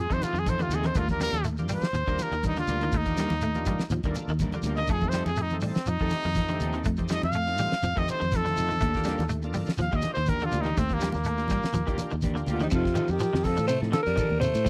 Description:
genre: afrobeat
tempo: 122 BPM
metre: 4/4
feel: swing 53% on 16ths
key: F mixolydian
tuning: A4 = 440 Hz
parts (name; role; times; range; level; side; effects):
- breathy trumpet; melody; 0.0-12.1 s; Bb3 to F5; -32 LUFS; equal; none
- clean electric guitar; arpeggios; 0.0-14.7 s; A2 to A3; -37 LUFS; equal; ensemble chorus
- fingered electric bass; bass; 0.0-14.7 s; D2 to A2; -32 LUFS; equal; none
- bright tonewheel organ; accompaniment; 0.1-12.6 s; A3 to A4; -41 LUFS; equal; slow rotary speaker, overdrive, chorus vibrato
- electric guitar at the edge of break-up; stabs; 0.1-14.5 s; F3 to Bb4; -39 LUFS; equal; subtle chorus
- damped 70s drum kit; drums; 0.1-14.7 s; hi-hat, kick drum, ride cymbal, snare drum; -33 LUFS; equal; none
- shekere; percussion; 0.1-14.7 s; none; -39 LUFS; equal; none
- congas; percussion; 0.2-14.7 s; none; -37 LUFS; equal; none
- mellow alto saxophone; melody; 12.5-14.7 s; Eb4 to C5; -30 LUFS; equal; none
- breathy tenor saxophone; second line; 12.5-14.7 s; C3 to A3; -38 LUFS; equal; none
room: studio ambience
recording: dry, close 1970s-style studio recording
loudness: -27 LUFS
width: mono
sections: 0.0-12.7 A section; 12.7-14.7 B section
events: trumpet solo 0.0-12.7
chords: 0.0 F7; 1.0 Ebmaj7; 4.9 F7; 8.8 Ebmaj7; 12.7 F7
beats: 0.47 | 0.96 1.45 1.95 2.44 | 2.93 3.42 3.91 4.40 | 4.89 5.39 5.88 6.37 | 6.86 7.35 7.84 8.33 | 8.82 9.31 9.80 10.28 | 10.77 11.26 11.75 12.23 | 12.72 13.21 13.69 14.18 | 14.66

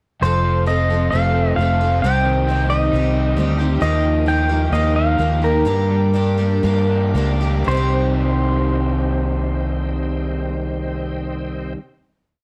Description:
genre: folk rock and heartland rock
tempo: 112-133 BPM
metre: 4/4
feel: straight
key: C dorian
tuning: A4 = 440 Hz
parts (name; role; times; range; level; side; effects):
- pedal steel guitar; melody; 0.2-11.7 s; Bb4 to G5; -24 LUFS; equal; none
- picked twelve-string acoustic guitar; accompaniment; 0.2-11.9 s; G2 to A4; -27 LUFS; equal; none
- bright tonewheel organ; sustained chords; 0.2-11.7 s; C4 to Eb6; -36 LUFS; equal; none
- crunchy overdriven guitar; riff; 0.2-11.8 s; F2 to G4; -27 LUFS; equal; none
- fingered electric bass; bass; 0.2-11.7 s; F1 to G2; -22 LUFS; equal; none
room: light reverb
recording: dark, warm production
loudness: -19 LUFS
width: mono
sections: 0.2-7.7 pre-chorus; 7.7-12.0 final chord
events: slowing down 3.8-7.7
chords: 0.2 F; 2.0 Cm; 3.8 Ebadd9; 5.7 Gm; 7.7 Cm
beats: | 0.22 0.67 1.12 1.57 | 2.02 2.47 2.92 3.37 | 3.82 4.28 4.73 5.20 | 5.67 6.15 6.64 7.15 | 7.68 8.22 8.75 9.29 | 9.82 10.36 10.89 11.43

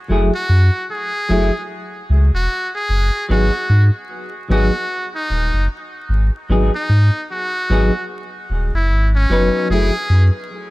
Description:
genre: trip hop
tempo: 75 BPM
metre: 4/4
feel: swing 59% on 16ths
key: unclear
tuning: A4 = 438 Hz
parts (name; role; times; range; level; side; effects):
- semi-hollow electric guitar; accompaniment; 0.1-9.9 s; F#3 to B4; -21 LUFS; left 1 dB; harmonic tremolo, tape echo
- warm sub bass; bass; 0.1-10.3 s; D#1 to G#2; -14 LUFS; equal; none
- trumpet with metal mute; melody; 0.4-10.3 s; C#4 to G#4; -22 LUFS; equal; vintage 12-bit sampler grit, dub echo
room: studio ambience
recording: dark, warm production, vinyl crackle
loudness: -15 LUFS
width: side -19 dB against mid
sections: 0.0-10.7 A section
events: none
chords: 0.0 F#m9; 3.3 G#m7; 9.7 F#m9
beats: | 0.10 0.90 1.70 2.50 | 3.30 4.10 4.90 5.70 | 6.50 7.30 8.10 8.90 | 9.70

